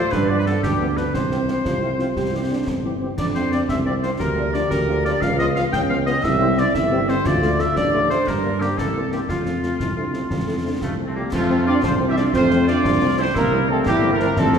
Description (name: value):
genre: military-style march for wind band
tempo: 118 BPM (dotted quarters)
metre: 6/8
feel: straight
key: F major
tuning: A4 = 439 Hz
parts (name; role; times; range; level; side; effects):
- clear woodwind section; second line; 0.0-14.6 s; A3 to G5; -24 LUFS; left 1 dB; none
- warm euphonium; second line; 0.0-14.6 s; F3 to G4; -25 LUFS; right 2 dB; none
- mellow tuba; bass; 0.0-14.6 s; G1 to G2; -23 LUFS; right 2 dB; none
- concert snare drum, concert bass drum and clash cymbals; drums; 0.1-14.6 s; none; -28 LUFS; left 1 dB; none
- dark trumpet section; melody; 0.3-14.6 s; C4 to E5; -28 LUFS; equal; none
- mellow French horn section; accompaniment; 0.3-14.6 s; D3 to D4; -28 LUFS; left 4 dB; none
- mellow trombone section; sustained chords; 11.3-14.6 s; G3 to E4; -27 LUFS; equal; none
room: wet concert hall reverb, RT60 2.1 s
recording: recorded in a church or concert hall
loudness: -18 LUFS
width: side -7 dB against mid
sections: 0.0-11.3 A section; 11.3-14.6 B section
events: none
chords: 0.1 G7; 1.1 F/C; 2.2 C; 3.2 F; 4.2 Bb/D; 5.2 Db7; 6.2 C; 7.3 Dm; 8.3 Gm; 8.8 C7; 9.3 F; 13.4 C7